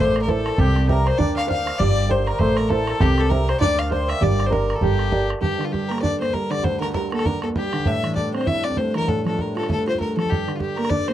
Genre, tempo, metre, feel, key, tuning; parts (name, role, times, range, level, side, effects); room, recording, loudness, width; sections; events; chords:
celtic folk, Celtic reel; 198 BPM; 4/4; swing 57% on 8ths; G dorian; A4 = 441 Hz
clear fiddle; melody; 0.0-11.1 s; F4 to F5; -24 LUFS; left 4 dB
hammered dulcimer; second line; 0.0-8.0 s; G4 to F5; -31 LUFS; right 3 dB
mellow accordion; second line; 0.0-5.3 s; G4 to F5; -31 LUFS; left 2 dB
warm upright piano; accompaniment; 0.0-11.1 s; D2 to F5; -24 LUFS; right 3 dB
upright bass; bass; 0.0-5.3 s; G1 to D2; -22 LUFS; equal
bodhran; percussion; 0.2-11.1 s; -26 LUFS; right 1 dB
pedal harmonium; drone; 5.4-11.1 s; G2 to D3; -32 LUFS; left 2 dB; stereo widening
little or no reverb; dry, close 1970s-style studio recording; -18 LUFS; side -12 dB against mid
0.0-5.4 A section; 5.4-11.1 B section
0.0 Am; 0.6 C; 1.2 Dm7; 1.8 Gm; 2.4 Am; 3.0 C; 3.6 Dm7; 4.2 Gm; 7.9 Am; 9.1 Dm; 10.3 Gm